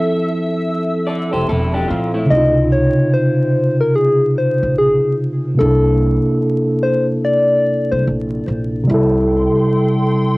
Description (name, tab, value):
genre	hip hop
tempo	73 BPM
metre	4/4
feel	swing 63% on 16ths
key	unclear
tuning	A4 = 437 Hz
part	mellow tine electric piano	accompaniment	0.0-10.4 s	C3 to A4	-16 LUFS	equal	fast stereo tremolo, cassette tape
part	hollow soft pad	sustained chords	0.0-2.3, 8.9-10.4 s	A4 to E6	-24 LUFS	left 1 dB	ensemble chorus, cassette tape
part	electric guitar through a small old amp	second line	1.1-2.5 s	A3 to D5	-23 LUFS	equal	spring reverb, cassette tape, tape echo
part	upright bass	bass	1.3-9.5 s	E1 to Db2	-20 LUFS	equal	transformer saturation
part	soft struck synth lead	melody	2.3-8.0 s	Ab4 to Eb5	-17 LUFS	left 1 dB	chorus, cassette tape
room	moderate booth ambience, RT60 0.2 s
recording	home recording on cassette, vinyl crackle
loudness	-13 LUFS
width	side -22 dB against mid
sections	0.0-2.3 A section; 2.3-10.4 B section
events	none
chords	0.0 Fmaj7; 2.3 Dbmaj9; 5.6 C13; 8.9 Am7/C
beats	0.66 1.48 | 2.31 3.13 3.95 4.77 | 5.59 6.42 7.24 8.06 | 8.88 9.70